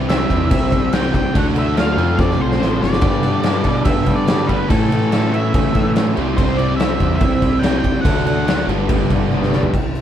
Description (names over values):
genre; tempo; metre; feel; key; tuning
classic rock; 143 BPM; 4/4; straight; G major; A4 = 439 Hz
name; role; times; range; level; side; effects
picked twelve-string acoustic guitar; accompaniment; 0.0-9.7 s; A2 to C5; -30 LUFS; right 4 dB; none
bright tonewheel organ; sustained chords; 0.0-9.7 s; G3 to E5; -32 LUFS; equal; none
distorted electric guitar; riff; 0.0-9.7 s; F2 to E4; -26 LUFS; right 6 dB; distortion
overdriven electric guitar; riff; 0.0-9.7 s; F2 to D4; -25 LUFS; right 2 dB; none
overdriven semi-hollow guitar; riff; 0.0-9.7 s; G2 to F#4; -22 LUFS; left 5 dB; none
growling picked electric bass; bass; 0.0-10.0 s; G1 to C#3; -21 LUFS; equal; overdrive
octave-fuzz lead guitar; melody; 0.1-8.7 s; A4 to G5; -24 LUFS; right 1 dB; distortion
big rock drum kit; drums; 0.1-10.0 s; crash cymbal, hi-hat, kick drum, snare drum, toms; -18 LUFS; equal; none
room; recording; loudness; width
moderate studio ambience, RT60 0.5 s; band playing live in one room; -14 LUFS; side -10 dB against mid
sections
0.0-9.7 A section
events
drum fill 2.2-3.0, 9.3-9.7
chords
0.0 C; 1.3 D; 2.0 F6; 3.0 Gadd9; 4.7 A; 6.2 C; 8.0 D; 8.7 Gadd9